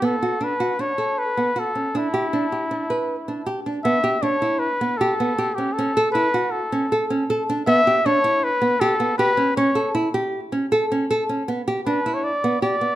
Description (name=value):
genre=contemporary instrumental, contemporary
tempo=157 BPM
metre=5/4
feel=straight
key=E dorian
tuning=A4 = 436 Hz
part: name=clear flugelhorn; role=melody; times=0.0-13.0 s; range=E4 to E5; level=-21 LUFS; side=left 1 dB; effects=none
part: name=nylon-string guitar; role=arpeggios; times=0.0-12.9 s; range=B3 to B4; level=-22 LUFS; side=right 1 dB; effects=none
room=moderate recital hall reverb, RT60 1.3 s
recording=close, detailed microphones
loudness=-19 LUFS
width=side -14 dB against mid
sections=0.0-3.9 A section; 3.9-13.0 B section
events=none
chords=0.0 Bm7; 1.9 Em7; 5.8 Dmaj7; 7.7 Em7; 9.6 A7; 11.5 Em7